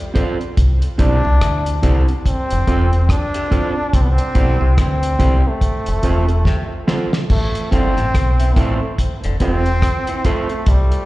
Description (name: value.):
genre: roots reggae.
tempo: 71 BPM.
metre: 4/4.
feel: swing 60% on 16ths.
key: unclear.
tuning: A4 = 438 Hz.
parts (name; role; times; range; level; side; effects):
bright trombone; melody; 0.0-11.1 s; G3 to D4; -22 LUFS; equal; tape echo, slapback echo.
mellow electric guitar; accompaniment; 0.1-10.5 s; C4 to C5; -24 LUFS; right 4 dB; warbly pitch drift, tape echo, slapback echo.
overdriven clav; arpeggios; 0.2-10.4 s; A2 to F3; -31 LUFS; left 8 dB; phaser, slapback echo.
cloth-damped thuddy drum kit; drums; 0.2-11.1 s; crash cymbal, hi-hat, kick drum, rim click, snare drum; -18 LUFS; equal; none.
deep dub fingered electric bass; bass; 0.6-10.9 s; E1 to D2; -16 LUFS; equal; none.
room: light reverb.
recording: live gig heard through the venue's PA, recital hall reverb, nothing above 10.7 kHz.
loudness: -14 LUFS.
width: side -18 dB against mid.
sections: 0.0-7.3 A section; 7.3-11.1 B section.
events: drum fill 6.5-7.3; trombone solo 7.3-11.1.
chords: 0.0 F; 0.6 C; 2.3 F; 3.9 C; 5.6 F; 7.3 Am; 9.0 F.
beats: | 0.57 1.41 2.25 3.09 | 3.94 4.78 5.62 6.46 | 7.30 8.14 8.98 9.82 | 10.67.